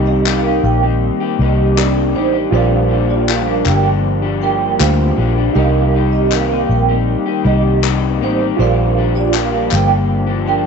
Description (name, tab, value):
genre	indie pop, bedroom pop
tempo	79 BPM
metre	4/4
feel	straight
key	C minor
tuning	A4 = 439 Hz
part	electric guitar through a small old amp	accompaniment	0.0-10.7 s	Bb2 to G4	-20 LUFS	left 14 dB	wide subtle chorus, warbly pitch drift
part	reed electric piano	accompaniment	0.0-10.7 s	D4 to F5	-23 LUFS	right 12 dB	cassette tape
part	hollow soft pad	sustained chords	0.0-10.7 s	Eb3 to G4	-21 LUFS	left 1 dB	chorus
part	vintage muted fingered electric bass	bass	0.0-10.7 s	G1 to D2	-16 LUFS	left 1 dB	none
part	vibraphone with soft mallets	second line	0.1-10.7 s	Eb4 to G5	-19 LUFS	right 11 dB	ensemble chorus, tape echo
part	group handclap	percussion	0.3-9.9 s	none	-22 LUFS	left 13 dB	none
room	light reverb, small room ambience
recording	1960s-style stereo with parts hard left and right, nothing above 8.0 kHz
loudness	-12 LUFS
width	side -5 dB against mid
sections	0.0-10.7 A section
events	none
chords	0.0 Cm7; 2.5 Bb6; 5.6 Cm7; 8.6 Bb6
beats	0.25 1.01 1.77 | 2.52 3.28 4.04 4.80 | 5.55 6.31 7.07 7.83 | 8.58 9.34 10.10